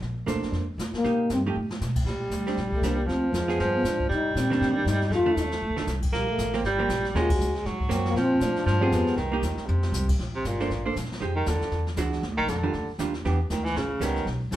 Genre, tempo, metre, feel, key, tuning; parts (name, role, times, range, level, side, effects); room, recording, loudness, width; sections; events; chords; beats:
jazz, small-group swing and bop; 236 BPM; 4/4; swing 58% on 8ths; Bb major; A4 = 441 Hz
upright bass; bass; 0.0-14.6 s; G1 to C3; -29 LUFS; equal
jazz brush drum kit; drums; 0.0-14.6 s; brushed snare drum, crash cymbal, hi-hat, kick drum, snare drum, toms; -33 LUFS; equal
hollow-body jazz guitar; accompaniment; 0.3-14.3 s; Eb3 to C5; -31 LUFS; right 4 dB
breathy trombone; melody; 1.0-9.2 s; G3 to Gb4; -27 LUFS; left 2 dB
mellow baritone saxophone; second line; 2.1-14.6 s; Bb2 to Bb3; -28 LUFS; right 1 dB
wet club reverb, RT60 0.8 s; heard from further back in the room; -23 LUFS; side -13 dB against mid
0.0-2.1 A section; 2.1-10.2 B section; 10.2-14.6 C section
drum fill 1.6, 5.6, 9.7; band accent 7.3; baritone saxophone solo 10.2-14.6
0.0 Bbmaj9; 1.0 Cm7; 1.6 Asus2; 2.1 Bb69; 3.1 Dm7b5; 3.6 G7b9; 4.1 Cm9; 5.1 F6; 6.1 Bb5; 6.6 Gm7; 7.1 Ebm7; 7.7 Ab9; 8.2 Bbadd9; 8.7 G7b9; 9.2 Cm7; 9.7 F5; 10.2 Bbmaj9; 11.2 Fm9; 11.7 E9; 12.2 Ebmaj9; 13.2 Em7; 13.8 A9
| 0.03 0.28 0.54 0.79 | 1.05 1.30 1.55 1.81 | 2.06 2.32 2.57 2.83 | 3.08 3.33 3.59 3.84 | 4.10 4.35 4.61 4.86 | 5.12 5.37 5.62 5.88 | 6.13 6.39 6.64 6.89 | 7.15 7.40 7.66 7.91 | 8.16 8.42 8.67 8.93 | 9.18 9.43 9.69 9.94 | 10.20 10.45 10.70 10.96 | 11.21 11.46 11.72 11.97 | 12.23 12.48 12.73 12.99 | 13.24 13.50 13.75 14.00 | 14.26 14.51